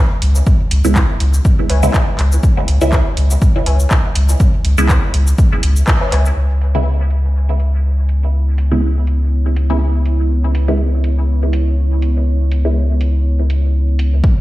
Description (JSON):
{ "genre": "dub techno", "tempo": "122 BPM", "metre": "4/4", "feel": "swing 54% on 16ths", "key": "C# minor", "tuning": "A4 = 438 Hz", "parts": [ { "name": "warm sub bass", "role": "bass", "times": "0.2-14.2 s", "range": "C#2", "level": "-13 LUFS", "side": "equal", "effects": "tube saturation, sidechain pumping" }, { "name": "soft vintage rhythm box", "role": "drums", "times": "0.2-14.1 s", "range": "cabasa, handclaps, hi-hat", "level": "-23 LUFS", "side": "equal", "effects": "low-pass filter on snare, low-pass filter on perc, low-pass filter on hats, dub echo" }, { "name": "electronic kick drum", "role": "drums", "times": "0.5-6.0, 14.2-14.3 s", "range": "none", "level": "-13 LUFS", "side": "equal", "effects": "overdrive" }, { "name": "filtered dub chord stab", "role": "stabs", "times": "0.8-12.8 s", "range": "C#3 to E4", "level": "-21 LUFS", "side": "right 1 dB", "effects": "phaser, sidechain pumping, dub echo" }, { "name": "warbly dusty pluck", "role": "riff", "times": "1.7-6.3 s", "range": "B4 to G#5", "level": "-28 LUFS", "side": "left 2 dB", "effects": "chorus, sidechain pumping, dub echo" }, { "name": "deep dark ambient pad", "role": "sustained chords", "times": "8.2-14.4 s", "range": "B3 to C#5", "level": "-25 LUFS", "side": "right 3 dB", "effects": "chorus, built-in reverb, sidechain pumping" } ], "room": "digital ambience", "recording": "played on a big sound system in a bare room, stone room reverb", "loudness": "-12 LUFS", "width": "side -17 dB against mid", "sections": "0.0-6.4 A section; 6.4-14.2 B section", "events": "band accent 5.9", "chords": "0.0 C#m7", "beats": "| 0.47 0.96 1.45 1.94 | 2.43 2.92 3.42 3.91 | 4.40 4.89 5.38 5.88 | 6.37 6.86 7.35 7.84 | 8.34 8.83 9.32 9.81 | 10.30 10.79 11.29 11.78 | 12.27 12.76 13.25 13.74 | 14.24" }